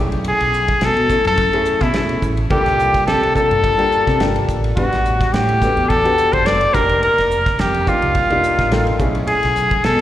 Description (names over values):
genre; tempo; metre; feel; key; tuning
electric jazz fusion; 106 BPM; 4/4; swing 54% on 16ths; unclear; A4 = 441 Hz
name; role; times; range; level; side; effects
warm baby grand piano; accompaniment; 0.0-10.0 s; G3 to G5; -23 LUFS; left 2 dB; slapback echo
mellow fretless electric bass; bass; 0.0-10.0 s; F1 to C3; -21 LUFS; right 1 dB; ensemble chorus
damped 70s drum kit; drums; 0.1-10.0 s; hi-hat, kick drum, ride cymbal, snare drum; -23 LUFS; equal; none
clear trumpet; melody; 0.3-10.0 s; E4 to D5; -16 LUFS; left 1 dB; slapback echo, analog delay
room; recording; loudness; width
light reverb, small room reverb; live gig heard through the venue's PA, recital hall reverb; -14 LUFS; side -12 dB against mid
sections
0.0-10.0 A section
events
grand piano fill 8.4-9.3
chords
0.0 B13sus4; 2.5 C13sus4; 4.8 A13sus4; 6.7 F13sus4; 9.0 B13sus4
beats
| 0.26 0.82 1.39 1.95 | 2.51 3.08 3.64 4.21 | 4.77 5.34 5.90 6.46 | 7.03 7.59 8.15 8.72 | 9.28 9.84